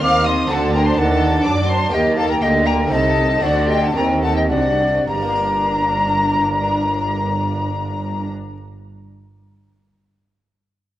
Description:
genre	classical, baroque-style concerto movement with solo episodes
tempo	102-127 BPM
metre	3/4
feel	straight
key	G minor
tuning	A4 = 444 Hz
part	mellow hollow silver concert flute	melody	0.0-8.3 s	D5 to D6	-20 LUFS	left 1 dB	none
part	rich chamber violin section	melody	0.0-8.3 s	F#5 to F6	-26 LUFS	left 4 dB	none
part	warm symphonic violin section	second line	0.0-8.3 s	F#4 to F5	-26 LUFS	left 1 dB	none
part	harpsichord	accompaniment	0.0-8.6 s	G2 to Bb4	-29 LUFS	equal	none
part	warm studio viola section	accompaniment	0.0-8.3 s	Bb3 to Eb4	-24 LUFS	right 1 dB	none
part	rich chamber double bass section	bass	0.0-8.3 s	G1 to F#2	-23 LUFS	right 1 dB	none
part	warm chamber cello section	bass	0.0-8.3 s	G2 to F#3	-24 LUFS	right 2 dB	none
room	moderate concert hall reverb, RT60 1.9 s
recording	worn, warbling old tape, cassette tape, warbly pitch drift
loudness	-15 LUFS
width	side -13 dB against mid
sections	0.0-5.1 A section; 5.1-8.6 B section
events	slowing down 1.2-5.1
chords	0.0 Cm; 0.5 D7; 1.9 Eb; 2.9 Adim/C; 3.4 D7; 5.1 Gm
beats	0.03 | 0.50 0.98 1.45 | 1.93 2.42 2.92 | 3.43 3.95 4.50 | 5.08 5.67 6.25 | 6.84 7.43 8.01

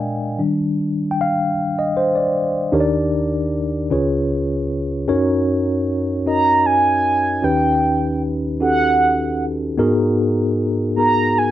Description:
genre	gospel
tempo	51 BPM (dotted quarters)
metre	6/8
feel	straight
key	F# major from 5.1 s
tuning	A4 = 438 Hz
part	mellow tine electric piano	accompaniment	0.0-11.5 s	Db2 to Ab5	-18 LUFS	left 1 dB	medium stereo tremolo
part	mellow horn-like synth lead	melody	6.3-11.5 s	F#5 to A#5	-16 LUFS	right 2 dB	chorus
room	light reverb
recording	none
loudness	-16 LUFS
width	side -13 dB against mid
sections	0.0-2.7 A section; 2.7-5.1 B section; 5.1-11.5 C section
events	tine electric piano solo 0.0-2.7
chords	0.4 Ebmaj7; 3.9 Db7; 5.1 F#6; 7.4 D#7alt; 9.8 G#m9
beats	| 0.39 1.57 | 2.74 3.92 | 5.09 6.27 | 7.44 8.62 | 9.79 10.96

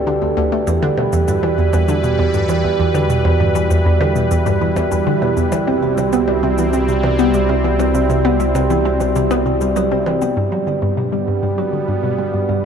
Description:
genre	ambient, sequencer-driven space music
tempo	99 BPM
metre	4/4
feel	straight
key	G major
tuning	A4 = 441 Hz
part	sweeping resonant pad	sustained chords	0.0-12.7 s	G2 to B4	-22 LUFS	equal	chorus
part	vibraphone with soft mallets	arpeggios	0.0-12.7 s	F#4 to G5	-19 LUFS	right 3 dB	auto-pan, low-pass filter, tape echo
part	round analog bass	bass	0.0-10.3 s	C2 to E2	-23 LUFS	left 1 dB	tube saturation
part	hollow square pluck	riff	0.1-12.6 s	D2 to C4	-18 LUFS	equal	chorus, phaser, tape echo
part	percussion blips and shaker	percussion	0.7-10.3 s	none	-30 LUFS	left 1 dB	overdrive, tape echo
room	wet huge ambient reverb, RT60 8.4 s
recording	dark, warm production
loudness	-14 LUFS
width	side -7 dB against mid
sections	0.0-10.4 A section; 10.4-12.7 B section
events	fade-in on analog synth pad 0.0-10.4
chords	0.0 Dsus2; 0.7 Em; 5.5 C; 10.4 Gmaj7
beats	0.07 | 0.67 1.28 1.89 2.49 | 3.10 3.70 4.31 4.92 | 5.52 6.13 6.73 7.34 | 7.95 8.55 9.16 9.76 | 10.37 10.98 11.58 12.19

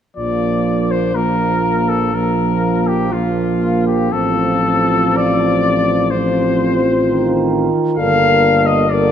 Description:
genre	classical, hymn-like piece for brass band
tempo	55-66 BPM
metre	4/4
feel	rubato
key	Bb major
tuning	A4 = 440 Hz
part	warm cornet	melody	0.2-9.1 s	F4 to F5	-18 LUFS	left 4 dB	none
part	mellow French horn section	second line	0.2-9.1 s	F4 to Bb4	-21 LUFS	right 5 dB	none
part	mellow euphonium	accompaniment	0.2-9.1 s	Bb3 to C4	-21 LUFS	left 2 dB	none
part	warm euphonium	accompaniment	0.2-9.1 s	D3 to F3	-21 LUFS	right 3 dB	none
part	mellow tuba	bass	0.2-9.1 s	G1 to Bb1	-21 LUFS	equal	none
room	wet concert hall reverb, RT60 2.0 s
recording	none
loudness	-13 LUFS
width	side -9 dB against mid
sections	0.2-9.1 A section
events	none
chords	0.2 Bb5; 4.1 F/A; 8.0 Gm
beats	| 0.17 1.15 2.14 3.13 | 4.13 5.17 6.12 7.05 | 7.98 8.90

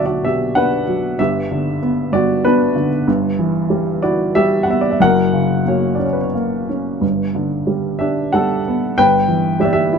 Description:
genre	classical, lyrical solo piano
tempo	94 BPM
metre	3/4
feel	rubato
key	unclear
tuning	A4 = 439 Hz
part	warm upright piano	solo	0.0-10.0 s	F#1 to G5	-14 LUFS	equal	none
room	moderate spring reverb, RT60 1.2 s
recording	close, detailed microphones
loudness	-14 LUFS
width	side -6 dB against mid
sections	0.0-10.0 A section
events	none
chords	0.0 Bm; 1.2 G; 5.0 F#; 7.0 Gadd9; 9.0 Em/G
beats	0.56 | 1.19 1.82 2.45 | 3.07 3.71 4.35 | 5.00 5.67 6.35 | 7.03 7.68 8.33 | 8.97 9.60

